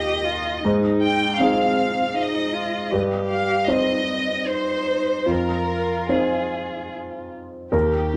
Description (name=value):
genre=neoclassical piano and strings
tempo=71-80 BPM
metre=3/4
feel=rubato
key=F minor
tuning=A4 = 439 Hz
part: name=warm chamber violin section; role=melody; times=0.0-8.2 s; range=G4 to G5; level=-26 LUFS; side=equal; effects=none
part: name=dark cello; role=second line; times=0.0-7.3 s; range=C4 to G4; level=-30 LUFS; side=equal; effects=none
part: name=felt-muted upright piano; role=accompaniment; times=0.0-8.2 s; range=Eb2 to G5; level=-25 LUFS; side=equal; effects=none
room=moderate stone room reverb, RT60 1.1 s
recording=band playing live in one room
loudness=-22 LUFS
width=mono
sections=0.0-7.7 A section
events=none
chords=0.0 Ebadd9; 0.6 Ab; 2.9 Cm/G; 5.3 Fm7